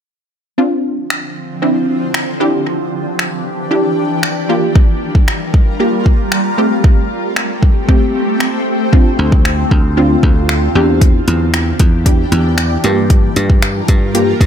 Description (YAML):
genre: dance-pop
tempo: 115 BPM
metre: 4/4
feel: straight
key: D minor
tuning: A4 = 440 Hz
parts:
  - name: wide unison pluck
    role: accompaniment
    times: 0.6-14.5 s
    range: A3 to G4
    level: -17 LUFS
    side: equal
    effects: sidechain pumping
  - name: shimmering ambient pad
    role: sustained chords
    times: 1.3-14.5 s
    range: D3 to Bb4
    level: -19 LUFS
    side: equal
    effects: chorus, built-in reverb, phaser, sidechain pumping
  - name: deep house drum kit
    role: drums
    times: 1.1-14.5 s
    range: finger snaps, hi-hat, kick drum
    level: -12 LUFS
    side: equal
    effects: none
  - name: dry thumbed slap bass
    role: bass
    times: 9.2-14.5 s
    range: D2 to G2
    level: -14 LUFS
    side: equal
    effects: sidechain pumping
room: digital ambience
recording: echo-heavy mix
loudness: -11 LUFS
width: side -8 dB against mid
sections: 0.6-14.5 A section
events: none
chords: 0.6 Dm7; 2.4 Em7; 4.5 Gm7; 6.6 Am7; 8.9 Dm7; 10.8 Em7; 12.8 Gm7